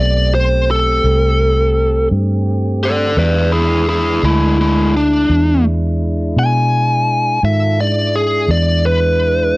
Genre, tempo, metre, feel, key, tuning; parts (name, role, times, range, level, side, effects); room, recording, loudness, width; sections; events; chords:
slow blues; 56 BPM (dotted quarters); 12/8; straight; A4 = 442 Hz
biting lead guitar; melody; 0.0-9.6 s; G#3 to G#5; -15 LUFS; equal; overdrive
tonewheel organ; sustained chords; 0.0-9.6 s; D#3 to A4; -23 LUFS; equal; slow rotary speaker, overdrive
vintage muted fingered electric bass; bass; 0.0-9.5 s; B1 to B2; -15 LUFS; equal
little or no reverb; dry, close 1970s-style studio recording; -12 LUFS; side -21 dB against mid
0.0-9.6 A section
lead electric guitar solo 0.0-9.6
0.0 Am7; 3.2 E7